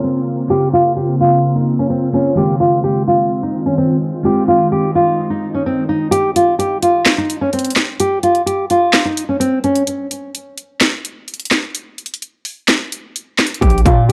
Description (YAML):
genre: hip hop, trap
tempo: 128 BPM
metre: 4/4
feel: half-time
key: unclear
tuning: A4 = 440 Hz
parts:
  - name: nylon-string guitar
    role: melody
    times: 0.0-9.8, 13.6-14.1 s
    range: C4 to G4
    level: -17 LUFS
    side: equal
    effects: low-pass filter, digital delay
  - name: glassy digital keys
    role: accompaniment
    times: 0.0-6.1 s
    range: Db3 to F4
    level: -23 LUFS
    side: equal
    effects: chorus, low-pass filter
  - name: glassy FM pad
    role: sustained chords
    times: 0.0-6.1, 14.1 s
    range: Db3 to F4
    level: -23 LUFS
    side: equal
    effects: ensemble chorus, built-in reverb
  - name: trap drum kit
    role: drums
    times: 6.1-14.1 s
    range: handclaps, hi-hat, kick drum, snare drum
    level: -18 LUFS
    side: equal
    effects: overdrive
  - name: distorted 808-style bass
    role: bass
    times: 13.6-14.1 s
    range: Bb1 to Bb2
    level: -15 LUFS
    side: equal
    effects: distortion
room: light reverb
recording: dark, warm production, low-pass filter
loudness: -15 LUFS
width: mono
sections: 0.0-6.1 A section; 6.1-14.1 B section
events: filter sweep 0.0-6.1; break 6.1-13.6; kick muted 12.7-13.6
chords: 0.0 Bbmadd9; 2.4 Fm7; 6.1 N.C.